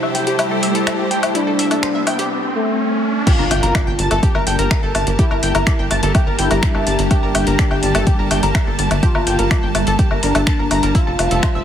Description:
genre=melodic techno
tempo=125 BPM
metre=4/4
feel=straight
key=G dorian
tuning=A4 = 439 Hz
part: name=expressive synth lead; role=melody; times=0.0-11.6 s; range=A3 to G4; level=-23 LUFS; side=left 1 dB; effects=lush chorus, sidechain pumping, ping-pong delay
part: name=evolving wavetable pad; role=sustained chords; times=0.0-11.6 s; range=C3 to E5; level=-25 LUFS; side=right 2 dB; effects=ensemble chorus, built-in reverb, sidechain pumping
part: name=tight sequenced synth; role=arpeggios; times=0.0-11.6 s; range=E4 to Bb6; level=-23 LUFS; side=left 1 dB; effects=chorus, sidechain pumping, digital delay
part: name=techno drum kit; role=drums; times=0.0-11.5 s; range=crash cymbal, finger snaps, hi-hat, woodblock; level=-22 LUFS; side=left 2 dB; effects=none
part: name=riser and impact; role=sound effects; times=0.0-5.2 s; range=none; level=-25 LUFS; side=equal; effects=none
part: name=clear studio string section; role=texture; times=0.0-11.6 s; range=F3 to A5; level=-27 LUFS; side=equal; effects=sidechain pumping
part: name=brassy analog pad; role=stabs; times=0.6-0.7, 4.5-10.5 s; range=G3 to A4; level=-26 LUFS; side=left 3 dB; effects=chorus, sidechain pumping, digital delay
part: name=electronic kick drum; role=drums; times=3.3-11.5 s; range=none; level=-16 LUFS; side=equal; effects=overdrive
part: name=tight sequencer bass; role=bass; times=3.4-11.6 s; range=F1 to G1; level=-20 LUFS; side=equal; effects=sidechain pumping
room=light reverb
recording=heavily compressed radio sound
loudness=-14 LUFS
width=side -9 dB against mid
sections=0.0-3.3 A section; 3.3-11.6 B section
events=build-up 0.0-3.3; riser 0.0-3.3; filter sweep on analog synth lead 0.0-3.3; drop 3.3-11.6; impact 3.3-5.2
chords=0.0 Am7; 3.3 Gmadd9; 10.9 Fmaj7

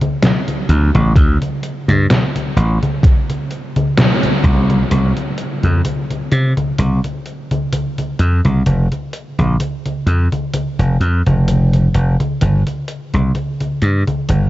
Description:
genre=vaporwave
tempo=64 BPM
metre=4/4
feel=swing 55% on 16ths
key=unclear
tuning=A4 = 441 Hz
part: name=detuned 8-bit digital drum machine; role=drums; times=0.0-14.5 s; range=congas, hi-hat, snare drum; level=-18 LUFS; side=equal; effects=overdrive, vintage 12-bit sampler grit
part: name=slap bass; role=bass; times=0.7-14.5 s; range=F1 to C3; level=-12 LUFS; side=equal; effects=none
part: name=electronic kick drum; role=drums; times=1.2-4.6 s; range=none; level=-11 LUFS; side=equal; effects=overdrive, vintage 12-bit sampler grit
room=moderate huge ambient reverb, RT60 7.6 s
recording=dreamy mix soaked in reverb, cassette tape, nothing above 7.6 kHz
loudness=-13 LUFS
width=side -15 dB against mid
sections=0.0-4.9 A section; 4.9-14.5 B section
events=band accent 4.0-4.4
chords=none

